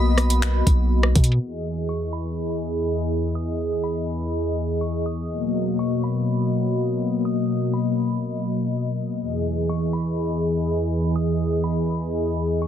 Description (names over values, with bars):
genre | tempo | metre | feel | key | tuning
hip hop, atmospheric cloud-rap | 123 BPM | 4/4 | half-time | unclear | A4 = 440 Hz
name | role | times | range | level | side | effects
glassy synth bell | melody | 0.0-12.7 s | B5 to D#6 | -37 LUFS | right 2 dB | chorus, phaser, low-pass filter, digital delay, plate reverb
warm analog pad | sustained chords | 0.0-12.7 s | E2 to D#5 | -22 LUFS | left 1 dB | chorus, sidechain pumping
long sustained 808-style bass | bass | 0.0-1.4 s | B1 to B2 | -19 LUFS | equal | none
smooth R&B drum kit | drums | 0.2-1.4 s | finger snaps, hi-hat, kick drum, rim click | -20 LUFS | equal | soft clipping on snare
room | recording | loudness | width
moderate small room reverb, RT60 0.6 s | dense, heavily limited modern master, low-pass filter | -21 LUFS | side -9 dB against mid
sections
0.0-1.4 A section; 1.4-12.7 B section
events
none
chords
0.0 Bmaj7; 1.4 Emaj7; 5.3 Bmaj7; 9.2 Emaj7